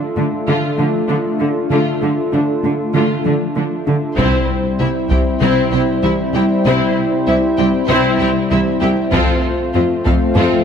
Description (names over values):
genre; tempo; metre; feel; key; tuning
cinematic, hybrid orchestral and electronic film score; 97 BPM; 4/4; straight; unclear; A4 = 437 Hz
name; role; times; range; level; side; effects
hollow soft pad; sustained chords; 0.0-10.6 s; G3 to C5; -20 LUFS; equal; chorus
soft round pluck; arpeggios; 0.0-10.6 s; C3 to D4; -24 LUFS; left 1 dB; chorus, ping-pong delay
rich symphonic viola section; accompaniment; 0.2-10.6 s; D3 to F4; -21 LUFS; equal; none
rich symphonic cello section; bass; 0.2-10.4 s; C2 to D3; -20 LUFS; right 2 dB; none
warm symphonic violin section; second line; 4.2-10.6 s; C4 to G5; -22 LUFS; left 3 dB; none
mellow French horn section; sustained chords; 4.2-10.6 s; G3 to F4; -20 LUFS; left 4 dB; none
taiko ensemble; drums; 4.2-5.4, 9.1-10.3 s; none; -20 LUFS; left 1 dB; none
room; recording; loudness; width
moderate scoring stage reverb, RT60 1.6 s; none; -13 LUFS; side -7 dB against mid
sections
0.0-4.2 A section; 4.2-10.6 B section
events
none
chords
0.0 Dm; 4.2 C; 9.1 F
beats
0.47 1.09 | 1.71 2.33 2.94 3.56 | 4.18 4.80 5.42 6.04 | 6.66 7.28 7.89 8.51 | 9.13 9.75 10.37